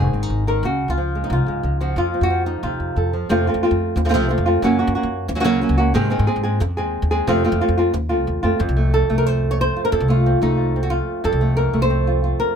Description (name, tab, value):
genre	flamenco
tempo	181 BPM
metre	4/4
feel	straight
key	F phrygian dominant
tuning	A4 = 440 Hz
part	flamenco guitar	melody	0.0-12.6 s	F2 to Db5	-19 LUFS	right 1 dB	none
part	upright bass	bass	0.0-12.3 s	F1 to Ab2	-21 LUFS	equal	none
room	little or no reverb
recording	close, detailed microphones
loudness	-17 LUFS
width	side -7 dB against mid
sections	0.0-3.3 A section; 3.3-8.6 B section; 8.6-12.6 C section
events	none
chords	0.0 Ab; 0.6 Db; 2.0 F; 4.6 Gb; 6.0 Ab; 7.3 F